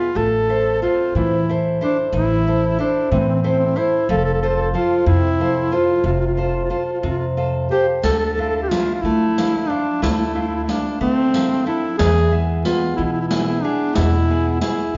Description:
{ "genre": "italian folk, Italian serenade", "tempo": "61 BPM (dotted quarters)", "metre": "6/8", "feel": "straight", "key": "A minor", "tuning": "A4 = 441 Hz", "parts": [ { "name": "mellow duduk", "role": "melody", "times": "0.0-14.9 s", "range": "C4 to A4", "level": "-23 LUFS", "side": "equal", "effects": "none" }, { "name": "nylon-string guitar", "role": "accompaniment", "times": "0.0-15.0 s", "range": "B2 to E5", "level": "-23 LUFS", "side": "equal", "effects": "none" }, { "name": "upright bass", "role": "bass", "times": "0.2-15.0 s", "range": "F1 to E3", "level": "-25 LUFS", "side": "equal", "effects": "none" }, { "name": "riq", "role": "percussion", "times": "8.0-14.9 s", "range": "none", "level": "-29 LUFS", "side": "equal", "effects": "none" } ], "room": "wet recital hall reverb, RT60 1.5 s", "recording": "recorded in a church or concert hall, nothing above 7.5 kHz", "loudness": "-19 LUFS", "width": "mono", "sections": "0.0-15.0 A section", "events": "none", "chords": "0.2 Am; 4.1 F; 8.0 Dmadd9; 12.0 E", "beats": "| 0.15 1.15 | 2.13 3.11 | 4.09 5.07 | 6.05 7.04 | 8.04 9.04 | 10.03 11.01 | 11.99 12.97 | 13.96 14.95" }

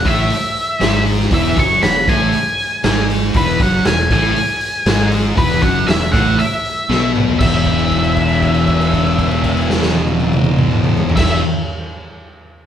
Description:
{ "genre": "garage rock duo or trio", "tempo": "118 BPM", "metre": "4/4", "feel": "straight", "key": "E major", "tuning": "A4 = 439 Hz", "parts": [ { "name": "octave-fuzz lead guitar", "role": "melody", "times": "0.0-11.4 s", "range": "B4 to C#6", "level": "-19 LUFS", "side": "equal", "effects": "distortion" }, { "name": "thick fuzz guitar", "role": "riff", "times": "0.0-11.4 s", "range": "E2 to B3", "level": "-17 LUFS", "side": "left 2 dB", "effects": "distortion" }, { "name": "growling fingered electric bass", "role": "bass", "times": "0.0-11.4 s", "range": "E1 to B1", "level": "-21 LUFS", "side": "right 1 dB", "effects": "overdrive" }, { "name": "raw garage drum kit", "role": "drums", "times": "0.1-11.3 s", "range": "crash cymbal, hi-hat, kick drum, snare drum, toms", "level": "-18 LUFS", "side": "right 1 dB", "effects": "none" } ], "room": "moderate large studio reverb, RT60 1.3 s", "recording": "band playing live in one room", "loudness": "-13 LUFS", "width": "side -9 dB against mid", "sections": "0.0-7.4 A section; 7.4-11.5 B section", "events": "drum fill 6.9-7.4; held note 7.4-11.2", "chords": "0.0 E; 7.4 E5", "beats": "0.31 0.82 | 1.32 1.83 2.33 2.84 | 3.35 3.85 4.36 4.87 | 5.38 5.88 6.39 6.90 | 7.41 7.92 8.42 8.93 | 9.44 9.95 10.46 10.97" }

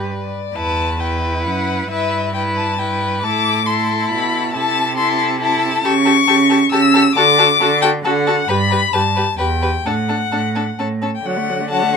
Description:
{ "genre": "quick classical-period movement for string quartet", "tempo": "135 BPM", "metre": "3/4", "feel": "rubato", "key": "E minor, D major from 5.8 s", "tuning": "A4 = 440 Hz", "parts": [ { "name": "clear violin", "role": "second line", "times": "0.0-12.0 s", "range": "A4 to F#5", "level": "-22 LUFS", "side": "left 4 dB", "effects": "none" }, { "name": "rich viola", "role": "accompaniment", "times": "0.0-12.0 s", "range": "F#3 to G4", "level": "-24 LUFS", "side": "right 1 dB", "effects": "none" }, { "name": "rich cello", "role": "bass", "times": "0.0-12.0 s", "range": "E2 to D3", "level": "-19 LUFS", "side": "right 4 dB", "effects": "none" }, { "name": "rich violin", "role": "melody", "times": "0.1-12.0 s", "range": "D5 to E6", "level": "-18 LUFS", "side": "left 6 dB", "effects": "none" } ], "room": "moderate small room reverb, RT60 0.6 s", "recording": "minimal, uncompressed stereo recording", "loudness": "-14 LUFS", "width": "side -6 dB against mid", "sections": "0.6-11.3 A section", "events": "none", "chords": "0.0 G; 0.6 Em; 1.9 Em/G; 3.2 Am; 4.5 Am/C; 5.8 A7/C#; 7.2 D; 8.5 G; 9.4 Em; 9.9 D/A; 10.8 A; 11.3 D", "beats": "0.09 | 0.55 1.00 1.45 | 1.90 2.35 2.79 | 3.23 3.67 4.11 | 4.54 4.98 5.41 | 5.84 6.28 6.72 | 7.17 7.61 8.05 | 8.49 8.94 9.39 | 9.86 10.33 10.79 | 11.26 11.72" }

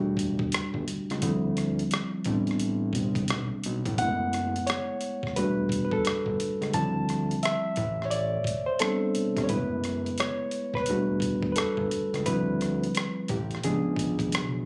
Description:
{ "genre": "R&B, neo-soul", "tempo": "87 BPM", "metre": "4/4", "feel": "swing 63% on 16ths", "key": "unclear", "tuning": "A4 = 440 Hz", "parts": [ { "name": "reed electric piano", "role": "accompaniment", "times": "0.0-14.7 s", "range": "F3 to A5", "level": "-30 LUFS", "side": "equal", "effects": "none" }, { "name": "fat analog bass", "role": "bass", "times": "0.0-14.6 s", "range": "E1 to D2", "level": "-34 LUFS", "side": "equal", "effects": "none" }, { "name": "boom bap sampler-style drum kit", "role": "drums", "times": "0.2-14.5 s", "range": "hi-hat, kick drum, rim click", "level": "-34 LUFS", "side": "equal", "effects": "none" } ], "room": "light reverb", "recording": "recorded on a phone in the room, club reverb", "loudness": "-28 LUFS", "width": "mono", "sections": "0.0-14.7 A section", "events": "reed electric piano solo 0.0-14.7", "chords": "0.0 Em11; 1.2 Dm11; 2.3 Am11; 4.0 F#m11; 5.4 Em11; 6.7 Dm11; 7.8 Am11; 9.5 F#m11; 10.9 Em11; 12.3 Dm11; 13.3 Gsus2/A; 13.6 C#7b9", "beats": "0.53 | 1.22 1.91 2.60 3.29 | 3.98 4.67 5.36 6.05 | 6.74 7.43 8.12 8.81 | 9.50 10.19 10.88 11.57 | 12.26 12.95 13.64 14.33" }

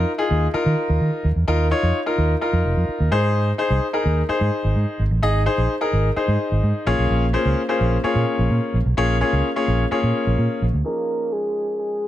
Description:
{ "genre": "dance-pop", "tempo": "128 BPM", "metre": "4/4", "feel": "straight", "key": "Db major", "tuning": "A4 = 439 Hz", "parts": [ { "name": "clear grand piano", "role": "accompaniment", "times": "0.0-12.1 s", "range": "F3 to Eb5", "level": "-21 LUFS", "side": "left 2 dB", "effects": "none" }, { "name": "vintage muted fingered electric bass", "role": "bass", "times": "0.0-10.8 s", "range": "F1 to Eb3", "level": "-19 LUFS", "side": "right 1 dB", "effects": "none" }, { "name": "soft octave-layered synth lead", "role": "melody", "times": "10.9-12.1 s", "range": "Ab4 to Bb4", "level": "-22 LUFS", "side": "right 1 dB", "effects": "chorus" } ], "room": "light reverb", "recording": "low-pass filter", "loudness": "-18 LUFS", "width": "side -13 dB against mid", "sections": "0.0-10.9 A section; 10.9-12.1 B section", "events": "drop 0.0-10.9; filter sweep 10.9-12.1", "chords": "0.0 Ebsus2; 3.1 Ab; 6.9 Bbm7; 10.9 Dbadd9", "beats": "0.07 0.54 1.01 | 1.48 1.95 2.41 2.88 | 3.35 3.82 4.29 4.76 | 5.23 5.70 6.16 6.63 | 7.10 7.57 8.04 8.51 | 8.98 9.45 9.91 10.38 | 10.85 11.32 11.79" }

